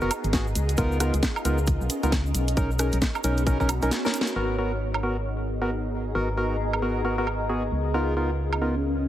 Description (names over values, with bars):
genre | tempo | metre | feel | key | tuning
UK garage, two-step garage | 134 BPM | 4/4 | swing 61% on 16ths | G# dorian | A4 = 440 Hz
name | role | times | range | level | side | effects
soft string machine | sustained chords | 0.0-9.1 s | B3 to A#4 | -37 LUFS | equal | phaser, ensemble chorus, sidechain pumping
percussive organ stab | stabs | 0.0-8.8 s | B3 to A#4 | -28 LUFS | equal | chorus, digital delay
organ-like FM bass | bass | 0.0-9.1 s | F#1 to C#2 | -27 LUFS | equal | tube saturation
egg shaker | percussion | 0.0-4.3 s | none | -39 LUFS | right 3 dB | none
granular cloud pad | texture | 0.0-9.1 s | B3 to A#5 | -32 LUFS | left 1 dB | built-in reverb, sidechain pumping
garage drum kit | drums | 0.1-8.6 s | hi-hat, rim click, snare drum, woodblock | -28 LUFS | right 1 dB | none
electronic kick drum | drums | 0.3-3.7 s | none | -26 LUFS | equal | none
room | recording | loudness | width
light reverb | heavily compressed radio sound | -23 LUFS | side -12 dB against mid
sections
0.0-4.4 A section; 4.4-9.1 B section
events
drum fill 3.9-4.4; band accent 4.2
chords
0.0 Bmaj7; 0.6 C#13; 2.3 Bmaj9; 4.4 G#m9; 7.7 C#13